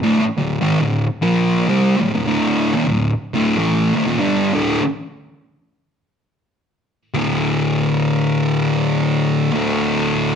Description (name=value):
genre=metal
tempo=101 BPM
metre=4/4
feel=swing 59% on 8ths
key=D phrygian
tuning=A4 = 441 Hz
part: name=thick fuzz guitar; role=solo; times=0.0-10.4 s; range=D2 to C4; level=-15 LUFS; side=equal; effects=distortion
room=wet large studio reverb, RT60 1.1 s, digital ambience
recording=none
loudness=-15 LUFS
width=side -7 dB against mid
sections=0.0-4.8 A section; 4.8-7.2 B section; 7.2-10.4 C section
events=none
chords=0.0 D5; 4.8 N.C.; 7.2 D5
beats=| 0.04 0.63 1.23 1.82 | 2.41 3.01 3.60 4.20 | 4.79 5.38 5.97 6.57 | 7.16 7.75 8.34 8.93 | 9.53 10.12